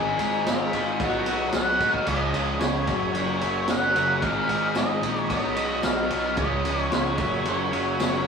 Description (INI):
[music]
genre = classic rock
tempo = 112 BPM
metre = 4/4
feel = straight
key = unclear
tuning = A4 = 440 Hz
[part]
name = octave-fuzz lead guitar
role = melody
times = 0.0-8.3 s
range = F4 to F#5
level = -27 LUFS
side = equal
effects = distortion
[part]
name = tonewheel organ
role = sustained chords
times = 0.0-8.3 s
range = F#3 to Eb5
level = -37 LUFS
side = equal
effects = none
[part]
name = crunchy overdriven guitar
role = riff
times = 0.0-8.3 s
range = Gb2 to Db4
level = -30 LUFS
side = right 5 dB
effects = spring reverb
[part]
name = overdriven semi-hollow guitar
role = riff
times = 0.0-8.3 s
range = Gb2 to Ab4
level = -29 LUFS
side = left 6 dB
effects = none
[part]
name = growling picked electric bass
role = bass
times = 0.0-8.2 s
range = Gb1 to Db2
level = -33 LUFS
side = right 1 dB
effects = overdrive
[part]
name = vintage drum kit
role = drums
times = 0.2-8.1 s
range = crash cymbal, kick drum, ride cymbal, snare drum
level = -27 LUFS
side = right 1 dB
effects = none
[part]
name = tambourine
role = percussion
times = 0.5-8.1 s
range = none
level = -45 LUFS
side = right 3 dB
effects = none
[sound]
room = moderate stone room reverb, RT60 1.4 s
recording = rough rehearsal-room recording, warm saturation, small room ambience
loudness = -22 LUFS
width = side -6 dB against mid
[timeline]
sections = 0.0-8.3 A section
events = none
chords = 0.0 Ab; 1.0 B; 2.1 Dbadd9; 2.9 Gb; 4.2 Ab; 5.3 B; 6.4 Dbadd9; 7.2 Gb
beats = 0.46 1.00 1.54 | 2.08 2.61 3.15 3.69 | 4.23 4.76 5.30 5.84 | 6.38 6.92 7.46 8.00